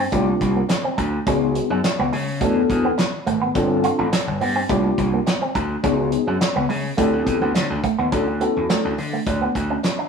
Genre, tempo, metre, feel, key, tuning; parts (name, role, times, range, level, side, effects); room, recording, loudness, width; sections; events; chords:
early-eighties boogie funk; 105 BPM; 4/4; straight; A4 = 441 Hz
electric guitar with an envelope filter; riff; 0.0-10.1 s; G#3 to F4; -25 LUFS; right 4 dB
gritty slap bass; bass; 0.0-9.8 s; G1 to D3; -23 LUFS; equal; overdrive
mellow tine electric piano; accompaniment; 0.1-8.9 s; Bb3 to A4; -22 LUFS; left 2 dB; medium stereo tremolo
damped 70s drum kit; drums; 0.1-10.0 s; handclaps, hi-hat, kick drum, snare drum; -24 LUFS; equal
cowbell; percussion; 0.1-10.0 s; -30 LUFS; left 2 dB
moderate stone room reverb, RT60 1.2 s; rough rehearsal-room recording, small room ambience; -18 LUFS; side -6 dB against mid
0.0-8.1 A section; 8.1-10.1 B section
0.1 C9sus4; 1.3 C#9sus4; 2.4 E9sus4; 3.6 G9sus4; 4.7 C9sus4; 5.8 C#9sus4; 7.0 D9sus4; 8.1 Dmaj9